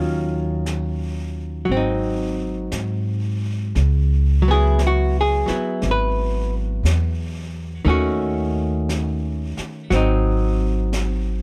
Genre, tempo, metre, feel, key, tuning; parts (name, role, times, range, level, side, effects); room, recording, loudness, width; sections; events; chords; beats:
jazz ballad; 58 BPM; 4/4; swing 68% on 8ths; C# minor; A4 = 440 Hz
archtop guitar, miked and amplified; accompaniment; 0.0-11.4 s; D#3 to B4; -25 LUFS; equal
upright bass; bass; 0.0-11.4 s; G#1 to G#2; -23 LUFS; equal
jazz brush drum kit; drums; 0.7-11.4 s; brushed snare drum, hi-hat, snare drum; -37 LUFS; equal
little or no reverb; dark, warm production; -21 LUFS; mono
0.0-11.4 A section
0.0 D#m9; 1.7 G#7; 3.8 C#m7; 7.9 D#m7b5; 9.9 G#7
0.66 1.69 2.72 | 3.75 4.79 5.82 6.84 | 7.87 8.89 9.92 10.94